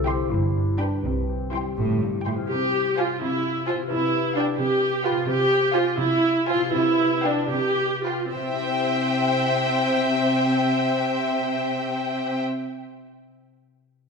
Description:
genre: cinematic, playful, whimsical film cue.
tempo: 70-88 BPM (dotted quarters).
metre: 6/8.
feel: straight.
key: C major.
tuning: A4 = 440 Hz.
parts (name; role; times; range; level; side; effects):
mellow clarinet; second line; 0.0-2.2 s; C4 to G4; -32 LUFS; right 1 dB; none.
concert harp; arpeggios; 0.0-12.8 s; G2 to G5; -30 LUFS; left 7 dB; none.
rich studio cello section; bass; 0.0-12.4 s; G2 to C3; -29 LUFS; right 2 dB; none.
warm studio double bass section; bass; 0.0-2.4 s; G1 to C2; -28 LUFS; right 2 dB; none.
rich studio violin section; melody; 0.1-12.4 s; G5 to C6; -29 LUFS; left 2 dB; none.
warm symphonic violin section; second line; 0.1-12.4 s; B4 to G5; -29 LUFS; left 3 dB; none.
rich chamber viola section; accompaniment; 0.1-12.4 s; C4 to G4; -23 LUFS; right 2 dB; none.
room: wet scoring stage reverb, RT60 1.8 s.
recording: minimal, uncompressed stereo recording.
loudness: -21 LUFS.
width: side -5 dB against mid.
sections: 0.0-2.5 A section; 2.5-8.3 B section; 8.3-11.7 C section.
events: slowing down 4.6-8.3.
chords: 0.3 G; 1.0 C; 2.5 Fm/C; 3.9 G7/C; 5.3 Fm/C; 6.7 G7/C; 8.3 C.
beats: 0.31 | 1.04 1.77 | 2.50 3.21 | 3.90 4.59 | 5.28 5.99 | 6.73 7.51 | 8.34 9.18 | 10.01 10.84.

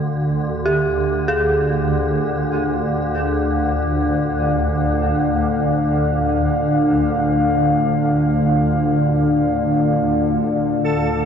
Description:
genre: dark ambient drone.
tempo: free time.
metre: none.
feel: none.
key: unclear.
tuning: A4 = 444 Hz.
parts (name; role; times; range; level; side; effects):
deep dark ambient pad; sustained chords; 0.0-11.3 s; A3 to F5; -19 LUFS; left 2 dB; chorus, built-in reverb.
swarming drone; drone; 0.0-11.3 s; D2 to D3; -20 LUFS; right 1 dB; built-in reverb.
dark detuned synth bell; arpeggios; 0.7-10.1 s; G4 to G#4; -23 LUFS; right 1 dB; chorus, diffuse ambient delay.
backwards swelling texture; texture; 10.4-11.3 s; A4; -26 LUFS; right 1 dB; built-in reverb.
room: wet cathedral reverb, RT60 5.9 s.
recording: none.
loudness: -16 LUFS.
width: side -7 dB against mid.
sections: 0.0-10.0 A section; 10.0-11.3 A section.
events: fade-in on ambient pad 0.0-10.0.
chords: 0.0 Dm.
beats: free time.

